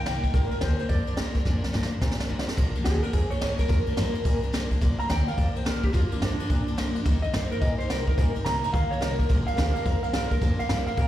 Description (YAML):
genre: rockabilly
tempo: 214 BPM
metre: 4/4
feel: swing 63% on 8ths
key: Bb mixolydian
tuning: A4 = 441 Hz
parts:
  - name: electric guitar through a small old amp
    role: melody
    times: 0.0-11.1 s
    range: D4 to Bb5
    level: -31 LUFS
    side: right 1 dB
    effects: harmonic tremolo, slapback echo, tape echo
  - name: picked steel-string acoustic guitar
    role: accompaniment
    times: 0.0-11.1 s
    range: Bb2 to Bb4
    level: -32 LUFS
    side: left 3 dB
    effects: slapback echo
  - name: upright bass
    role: bass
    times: 0.1-11.1 s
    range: Bb1 to Eb3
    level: -29 LUFS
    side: equal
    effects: none
  - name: jazz brush drum kit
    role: drums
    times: 0.1-11.1 s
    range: crash cymbal, kick drum, ride cymbal, snare drum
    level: -26 LUFS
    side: equal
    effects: none
room: little or no reverb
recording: live gig heard through the venue's PA, recital hall reverb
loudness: -23 LUFS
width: side -13 dB against mid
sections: 0.0-2.6 A section; 2.6-11.1 B section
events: drum fill 1.5-2.6; clean electric guitar solo 2.6-11.1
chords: 0.3 Bb; 7.1 Eb; 9.3 Bb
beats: 0.06 | 0.34 0.62 0.90 1.18 | 1.46 1.74 2.02 2.30 | 2.58 2.86 3.14 3.42 | 3.70 3.98 4.26 4.54 | 4.82 5.10 5.38 5.66 | 5.94 6.22 6.50 6.78 | 7.06 7.34 7.62 7.90 | 8.18 8.46 8.74 9.02 | 9.30 9.58 9.86 10.14 | 10.42 10.70 10.98